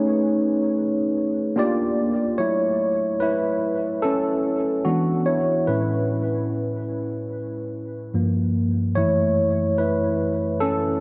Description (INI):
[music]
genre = R&B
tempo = 73 BPM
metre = 4/4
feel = swing 58% on 16ths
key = unclear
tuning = A4 = 440 Hz
[part]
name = tine electric piano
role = solo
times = 0.0-11.0 s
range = F#2 to D5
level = -23 LUFS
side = equal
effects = overdrive, analog chorus, diffuse ambient delay
[sound]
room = wet church reverb, RT60 3.3 s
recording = dreamy mix soaked in reverb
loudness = -23 LUFS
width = mono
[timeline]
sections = 0.0-2.4 A section; 2.4-11.0 B section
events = tine electric piano solo 2.4-11.0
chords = 0.0 B13; 1.6 Gm7; 2.4 F#m7; 4.9 E13; 5.7 Amaj9; 8.1 Gm7; 9.0 F#m7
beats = 0.74 1.57 | 2.39 3.21 4.03 4.85 | 5.68 6.50 7.32 8.14 | 8.96 9.79 10.61